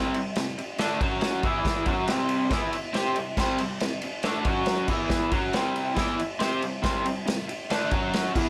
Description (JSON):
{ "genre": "garage rock duo or trio", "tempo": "139 BPM", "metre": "4/4", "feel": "straight", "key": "unclear", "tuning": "A4 = 440 Hz", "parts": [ { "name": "raw garage guitar", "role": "riff", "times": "0.0-8.5 s", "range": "C3 to C5", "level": "-28 LUFS", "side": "equal", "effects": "overdrive" }, { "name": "vintage drum kit", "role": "drums", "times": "0.1-8.5 s", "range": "crash cymbal, kick drum, ride cymbal, snare drum", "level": "-31 LUFS", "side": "equal", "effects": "none" } ], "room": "light reverb, small room ambience", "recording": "none", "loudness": "-27 LUFS", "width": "mono", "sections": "0.0-8.5 A section", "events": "none", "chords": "0.0 C5; 1.0 F#5; 1.4 E5; 1.9 C5; 4.5 F#5; 4.9 E5; 5.3 C5; 7.9 F#5", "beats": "0.37 0.80 1.23 | 1.66 2.10 2.53 2.96 | 3.39 3.82 4.25 4.68 | 5.12 5.55 5.98 6.41 | 6.84 7.28 7.71 8.14" }